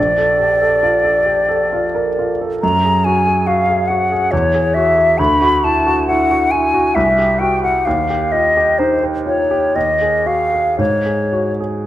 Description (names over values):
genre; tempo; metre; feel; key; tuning
classical, impressionist duo for flute and grand piano; 55-72 BPM; 3/4; rubato; unclear; A4 = 440 Hz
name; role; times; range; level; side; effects
hollow concert flute; melody; 0.0-11.5 s; C5 to Cb6; -14 LUFS; left 1 dB; none
clear grand piano; accompaniment; 0.0-11.9 s; Bb1 to Bb4; -18 LUFS; right 1 dB; none
room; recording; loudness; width
wet recital hall reverb, RT60 1.5 s; none; -13 LUFS; side -13 dB against mid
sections
0.0-11.9 A section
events
none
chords
0.0 Bbmaj7; 2.6 Gbsus2; 4.3 Eadd9; 5.2 Dadd9; 7.0 C; 7.9 Ebadd9; 9.8 Ebsus24; 10.8 N.C.